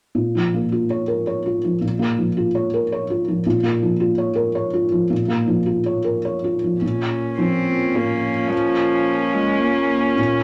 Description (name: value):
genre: neoclassical piano and strings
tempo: 108 BPM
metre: 3/4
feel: rubato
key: Bb minor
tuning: A4 = 440 Hz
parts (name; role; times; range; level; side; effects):
- felt-muted upright piano; accompaniment; 0.1-10.4 s; Bb2 to Db5; -22 LUFS; equal; none
- warm viola; accompaniment; 6.8-10.4 s; Db4; -24 LUFS; equal; none
- dark analog pad; sustained chords; 6.8-10.4 s; Bb3 to Bb4; -28 LUFS; equal; chorus
- rich cello; second line; 7.4-10.2 s; F3 to C4; -24 LUFS; equal; none
room: moderate studio reverb, RT60 0.8 s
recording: none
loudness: -20 LUFS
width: mono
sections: 0.2-6.8 A section; 6.8-10.4 B section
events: none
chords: 0.2 Bbm